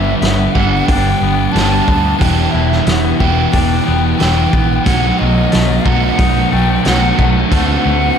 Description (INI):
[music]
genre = rock, shoegaze and dream pop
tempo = 90 BPM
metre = 4/4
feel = straight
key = G major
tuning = A4 = 440 Hz
[part]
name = breathy hollow jazz flute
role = melody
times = 0.0-8.2 s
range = D#5 to A5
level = -19 LUFS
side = equal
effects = ping-pong delay
[part]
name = twangy electric guitar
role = arpeggios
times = 0.0-8.2 s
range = E3 to D#4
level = -24 LUFS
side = left 9 dB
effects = lush chorus, ping-pong delay
[part]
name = overdriven semi-hollow guitar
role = riff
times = 0.0-8.2 s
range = B2 to G4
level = -17 LUFS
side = right 9 dB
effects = reverse reverb
[part]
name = thick fuzz guitar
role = riff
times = 0.0-8.2 s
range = E2 to D4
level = -18 LUFS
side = left 9 dB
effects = distortion, lush chorus
[part]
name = vintage muted fingered electric bass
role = bass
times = 0.0-8.1 s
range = E1 to D2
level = -17 LUFS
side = equal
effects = none
[part]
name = loose indie drum kit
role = drums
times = 0.2-7.7 s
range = hi-hat, kick drum, snare drum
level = -18 LUFS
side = equal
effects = none
[sound]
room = moderate plate reverb, RT60 2.6 s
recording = dreamy mix soaked in reverb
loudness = -11 LUFS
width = side -7 dB against mid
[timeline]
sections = 0.0-8.2 A section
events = none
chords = 0.0 G6; 2.2 Em7; 4.9 B7; 7.5 D7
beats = 0.23 0.89 1.55 | 2.21 2.87 3.54 4.20 | 4.86 5.53 6.19 6.85 | 7.51 8.18